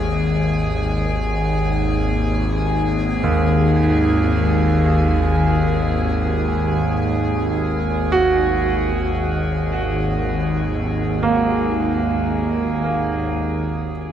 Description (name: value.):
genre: ambient.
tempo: free time.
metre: none.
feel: none.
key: unclear.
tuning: A4 = 440 Hz.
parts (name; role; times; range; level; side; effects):
bowed-like drone; drone; 0.0-14.1 s; G#1 to D#2; -20 LUFS; left 1 dB; built-in reverb, phaser.
metallic inharmonic drone; texture; 0.0-13.9 s; G#4; -26 LUFS; equal; chorus, built-in reverb.
clear concert grand piano; arpeggios; 3.2-14.1 s; D#2 to F#4; -20 LUFS; right 2 dB; diffuse ambient delay.
room: wet huge ambient reverb, RT60 7.5 s.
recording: none.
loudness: -17 LUFS.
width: side -9 dB against mid.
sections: 0.0-13.9 A section.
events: none.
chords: 0.0 D#madd11/G#.